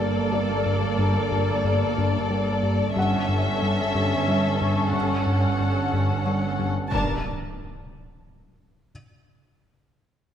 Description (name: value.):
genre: cinematic, suspense film score.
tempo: 91 BPM.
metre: 3/4.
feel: straight.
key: G hungarian minor.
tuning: A4 = 439 Hz.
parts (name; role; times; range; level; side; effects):
muted symphonic violin section; melody; 0.0-7.3 s; D5 to A5; -29 LUFS; left 4 dB; none.
muted symphonic violin section; second line; 0.0-7.3 s; A4 to Bb4; -31 LUFS; left 3 dB; none.
muted symphonic viola section; accompaniment; 0.0-7.3 s; Bb3 to D4; -29 LUFS; right 2 dB; none.
fat analog bass; riff; 0.0-6.8 s; G2 to G3; -26 LUFS; left 1 dB; none.
muted symphonic cello section; bass; 0.0-7.3 s; G2; -30 LUFS; right 1 dB; none.
muted symphonic double bass section; bass; 0.0-7.3 s; G1; -30 LUFS; right 4 dB; none.
felt-muted upright piano; texture; 0.0-6.9 s; D5 to F#5; -35 LUFS; left 1 dB; none.
impact; sound effects; 6.9-8.9 s; none; -34 LUFS; equal; none.
room: moderate scoring stage reverb, RT60 1.9 s.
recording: none.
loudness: -21 LUFS.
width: side -9 dB against mid.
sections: 0.0-6.9 A section; 6.9-8.9 B section.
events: impact 6.9-8.9.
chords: 0.0 Gmadd9; 3.0 A7/G; 6.9 G5.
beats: 0.33 | 0.99 1.65 2.30 | 2.96 3.62 4.28 | 4.94 5.60 6.26 | 6.92 7.58 8.24.